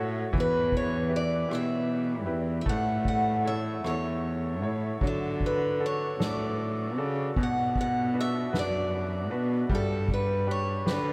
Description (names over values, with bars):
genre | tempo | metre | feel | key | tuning
acoustic folk-pop ballad | 51 BPM (dotted quarters) | 6/8 | straight | D major | A4 = 439 Hz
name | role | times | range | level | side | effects
picked acoustic archtop guitar | melody | 0.0-11.1 s | A4 to F#5 | -33 LUFS | equal | none
bright concert grand piano | accompaniment | 0.0-11.1 s | B2 to D5 | -36 LUFS | equal | none
rich cello | bass | 0.0-11.1 s | E2 to D3 | -32 LUFS | equal | none
soft-mallet drum kit | drums | 0.3-11.0 s | kick drum, ride cymbal, rim click, snare drum | -37 LUFS | equal | none
room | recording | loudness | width
moderate cathedral reverb, RT60 7.1 s | in a vast, echoing space | -28 LUFS | mono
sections
0.0-11.1 A section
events
none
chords
0.3 Em; 2.7 A; 5.0 D; 7.4 Bm; 9.7 G